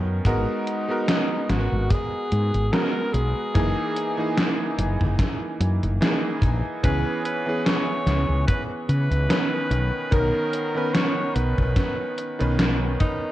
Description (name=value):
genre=vaporwave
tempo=73 BPM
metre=4/4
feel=swing 55% on 16ths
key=B major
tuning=A4 = 440 Hz
part: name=bright electric grand piano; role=accompaniment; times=0.0-13.3 s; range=D#3 to B4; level=-26 LUFS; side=right 1 dB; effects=wide subtle chorus
part: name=woody fretless electric bass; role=bass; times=0.0-13.0 s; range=F#1 to C#3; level=-23 LUFS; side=equal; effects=none
part: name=bright alto saxophone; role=melody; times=0.3-13.3 s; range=D#4 to C#5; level=-29 LUFS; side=equal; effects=tape echo
part: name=gated 80s digital drum machine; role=drums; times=0.3-13.2 s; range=hi-hat, snare drum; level=-25 LUFS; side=equal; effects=gated reverb, gated reverb snare
part: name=kick drum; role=drums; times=0.3-13.2 s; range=none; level=-23 LUFS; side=equal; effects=none
room=light reverb, small room ambience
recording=cassette tape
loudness=-21 LUFS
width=side -14 dB against mid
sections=0.0-13.3 A section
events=none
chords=0.3 G#m9; 3.5 F#13; 6.8 C#m7; 9.7 Bmaj9